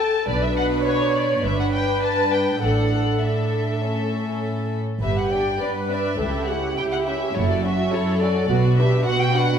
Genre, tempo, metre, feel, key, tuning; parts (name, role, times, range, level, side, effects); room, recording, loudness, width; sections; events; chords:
quick classical-period movement for string orchestra; 103 BPM; 4/4; rubato; A4 = 440 Hz
dark symphonic violin section; melody; 0.0-9.6 s; C#5 to A5; -26 LUFS; left 4 dB
warm symphonic violin section; second line; 0.0-9.6 s; B3 to D5; -26 LUFS; equal
dark symphonic viola section; accompaniment; 0.0-9.6 s; F#4 to C#5; -25 LUFS; equal
dark symphonic double bass section; bass; 0.3-9.0 s; F#1 to C#2; -27 LUFS; right 2 dB
warm symphonic cello section; bass; 0.3-9.6 s; C#2 to B2; -24 LUFS; right 2 dB
wet scoring stage reverb, RT60 1.6 s; -19 LUFS; side -8 dB against mid
0.0-9.6 A section
0.3 Bm; 1.4 G; 2.6 Asus4; 5.0 G; 6.2 C#dim; 7.4 F#m7; 8.5 Bm